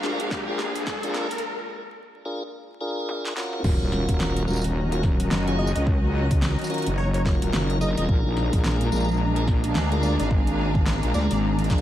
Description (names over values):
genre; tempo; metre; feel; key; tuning
glitch hop; 108 BPM; 4/4; swing 60% on 16ths; Eb minor; A4 = 438 Hz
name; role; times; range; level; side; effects
warbly tape-like pad; sustained chords; 0.0-11.8 s; Eb3 to Eb4; -31 LUFS; equal; chorus, built-in reverb, sidechain pumping
tonewheel organ; stabs; 0.0-11.8 s; Db4 to Bb4; -31 LUFS; equal; slow rotary speaker, sidechain pumping, ping-pong delay
wobble bass; bass; 0.0-11.8 s; Eb1 to F2; -24 LUFS; equal; chorus, overdrive, high-pass filter
pop drum kit; drums; 0.0-11.8 s; crash cymbal, hi-hat, snare drum, tambourine, toms; -31 LUFS; equal; high-pass filter on snare, high-pass filter on hats, high-pass filter on toms, high-pass filter on cymbals, high-pass filter on perc
riser and impact; sound effects; 0.0-5.9 s; none; -33 LUFS; equal; none
warm studio string section; texture; 0.0-11.8 s; Db4 to Bb5; -33 LUFS; left 1 dB; sidechain pumping
electronic kick drum; drums; 0.3-11.8 s; none; -24 LUFS; equal; none
plucky unison lead; melody; 5.6-11.4 s; Db5 to Eb5; -35 LUFS; right 1 dB; ping-pong delay
room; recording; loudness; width
light reverb; vinyl crackle, high-pass filter; -21 LUFS; side -12 dB against mid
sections
0.0-3.6 A section; 3.6-11.8 B section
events
build-up 0.0-3.6; drum fill 0.0-1.4, 3.1-3.6; riser 0.0-1.4; filter sweep on ambient pad 0.0-3.6; break 1.4-3.6; drop 3.6-11.8; impact 3.6-5.9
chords
0.0 Bb7; 3.6 Ebm7; 8.1 Bb7